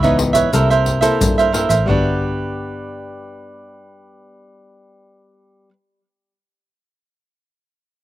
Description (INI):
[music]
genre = samba and choro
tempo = 89 BPM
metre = 4/4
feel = straight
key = G major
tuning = A4 = 439 Hz
[part]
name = cavaquinho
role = accompaniment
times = 0.0-5.7 s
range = E4 to E5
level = -18 LUFS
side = right 5 dB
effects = slapback echo
[part]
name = nylon-string guitar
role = accompaniment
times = 0.0-5.7 s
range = G2 to A4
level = -21 LUFS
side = left 2 dB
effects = slapback echo
[part]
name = vintage muted fingered electric bass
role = bass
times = 0.0-5.7 s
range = G1 to G2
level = -21 LUFS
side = equal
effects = none
[part]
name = maracas, pandeiro and surdo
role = percussion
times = 0.0-2.0 s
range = none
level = -22 LUFS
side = left 2 dB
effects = none
[sound]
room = little or no reverb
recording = recorded outdoors, with no room sound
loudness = -14 LUFS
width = side -14 dB against mid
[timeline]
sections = 0.0-1.9 A section; 1.9-4.6 B section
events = none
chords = 0.0 C#m9; 0.5 C6; 1.9 Gmaj7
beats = 0.53 1.21 | 1.88 2.56 3.24 3.91